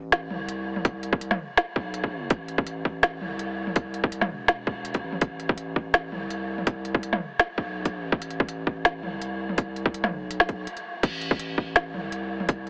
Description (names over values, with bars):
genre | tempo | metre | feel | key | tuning
half-time drum and bass | 165 BPM | 4/4 | half-time | A minor | A4 = 440 Hz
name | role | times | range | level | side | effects
saturated sub bass | bass | 0.0-12.7 s | E1 to C2 | -34 LUFS | equal | none
organic electronic drum kit | drums | 0.1-12.7 s | crash cymbal, hi-hat, snare drum, toms | -26 LUFS | equal | overdrive
electronic kick drum | drums | 0.8-12.6 s | none | -23 LUFS | equal | overdrive
room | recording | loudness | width
moderate huge ambient reverb, RT60 7.5 s | heavily compressed radio sound, multiband compression, AM radio sound | -24 LUFS | side -33 dB against mid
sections
0.0-12.7 A section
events
break 10.7-11.0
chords
none